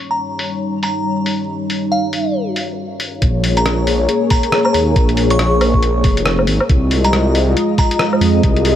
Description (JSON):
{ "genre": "future garage", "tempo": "138 BPM", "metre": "4/4", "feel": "swing 61% on 16ths", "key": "Bb dorian", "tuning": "A4 = 440 Hz", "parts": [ { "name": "dark analog pad", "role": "sustained chords", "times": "0.0-8.8 s", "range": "G3 to Eb5", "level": "-18 LUFS", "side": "left 1 dB", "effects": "chorus, vintage 12-bit sampler grit, sidechain pumping" }, { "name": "glassy synth bell", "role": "melody", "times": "0.1-8.0 s", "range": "F5 to Db6", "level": "-22 LUFS", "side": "equal", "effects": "chorus, dub echo" }, { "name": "lo-fi sampler-style drum kit", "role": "drums", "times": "0.4-8.8 s", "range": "hi-hat, rim click, woodblock", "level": "-21 LUFS", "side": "left 1 dB", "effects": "low-pass filter on hats, low-pass filter on snare, low-pass filter on perc" }, { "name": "swelling detuned saw bass", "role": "bass", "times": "3.2-8.8 s", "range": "F1 to F2", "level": "-16 LUFS", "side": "equal", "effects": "sidechain pumping" }, { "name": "electronic kick drum", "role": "drums", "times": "3.2-8.5 s", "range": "none", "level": "-15 LUFS", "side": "equal", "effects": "none" } ], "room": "light reverb", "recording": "vinyl crackle, low-pass filter", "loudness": "-13 LUFS", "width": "side -10 dB against mid", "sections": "0.0-3.2 A section; 3.2-8.8 B section", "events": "filter sweep 0.0-3.2", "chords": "0.0 Eb7; 3.2 Bbm7; 6.7 Fm7/C" }